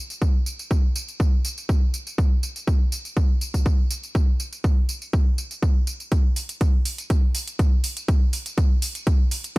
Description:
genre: house.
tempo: 122 BPM.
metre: 4/4.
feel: straight.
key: none.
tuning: none.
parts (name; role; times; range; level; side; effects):
electronic tambourine and hi-hat; drums; 0.1-9.6 s; none; -31 LUFS; right 1 dB; overdrive.
electronic kick drum; drums; 0.2-9.6 s; none; -19 LUFS; equal; overdrive.
room: little or no reverb.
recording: none.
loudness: -20 LUFS.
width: side -23 dB against mid.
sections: 0.0-6.1 A section; 6.1-9.6 B section.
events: build-up 6.1-9.6.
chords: none.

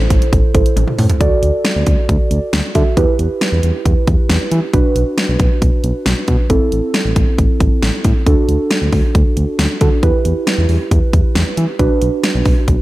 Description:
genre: synth-pop.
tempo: 136 BPM.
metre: 4/4.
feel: straight.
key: D mixolydian.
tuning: A4 = 440 Hz.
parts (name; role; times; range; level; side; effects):
muted felt-like synth keys; accompaniment; 0.0-12.8 s; C4 to E5; -18 LUFS; right 3 dB; chorus.
smooth synth bass; bass; 0.0-12.8 s; A1 to E3; -16 LUFS; equal; none.
pop drum kit; drums; 0.1-12.8 s; hi-hat, kick drum, snare drum, toms; -15 LUFS; equal; gated reverb.
room: digital ambience.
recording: none.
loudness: -12 LUFS.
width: side -17 dB against mid.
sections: 0.0-1.2 A section; 1.2-12.8 B section.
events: drum fill 0.8-1.2.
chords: 0.0 Am; 1.2 Dadd9; 3.0 Em; 4.7 Bm; 6.5 Am; 8.3 D; 10.0 Em; 11.8 Bm.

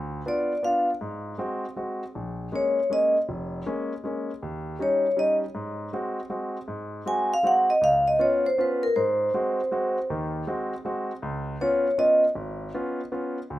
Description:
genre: jazz.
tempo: 159 BPM.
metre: 3/4.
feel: swing 65% on 8ths.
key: Ab mixolydian.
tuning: A4 = 440 Hz.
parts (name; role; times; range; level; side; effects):
clear concert grand piano; accompaniment; 0.0-13.6 s; F1 to Gb4; -30 LUFS; equal; none.
vibraphone with medium hard mallets; melody; 0.3-12.2 s; Bb4 to Ab5; -22 LUFS; equal; none.
room: studio ambience.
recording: rough home demo mix.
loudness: -23 LUFS.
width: side -15 dB against mid.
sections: 0.0-6.7 A section; 6.7-13.6 A section.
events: none.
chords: 0.0 Dm6; 1.0 Ab7; 2.1 Bbm7; 4.4 Eb7; 5.5 Ab7; 7.8 Db7; 8.9 Ab7; 11.2 Db7.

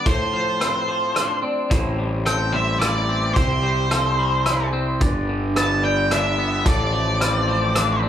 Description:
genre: post-rock.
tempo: 109 BPM.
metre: 3/4.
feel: straight.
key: unclear.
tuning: A4 = 439 Hz.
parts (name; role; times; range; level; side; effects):
octave-fuzz lead guitar; melody; 0.0-8.0 s; C5 to A5; -22 LUFS; right 1 dB; distortion.
pedal steel guitar; sustained chords; 0.0-8.1 s; C3 to E5; -34 LUFS; right 1 dB; none.
twangy electric guitar; arpeggios; 0.0-8.1 s; G2 to E4; -26 LUFS; left 2 dB; vibrato effect.
electric guitar through a small old amp; arpeggios; 0.1-8.1 s; G4 to B5; -29 LUFS; left 1 dB; vibrato effect.
loose indie drum kit; drums; 0.1-7.9 s; hi-hat, kick drum, rim click; -23 LUFS; equal; none.
fuzz picked electric bass; bass; 1.7-8.1 s; G1 to C2; -23 LUFS; equal; overdrive.
room: moderate large studio reverb, RT60 0.8 s.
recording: band playing live in one room.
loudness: -18 LUFS.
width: side -10 dB against mid.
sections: 0.0-8.1 A section.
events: none.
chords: 0.1 F6/A; 1.7 Am7; 3.4 C; 5.0 G; 6.7 F6/A.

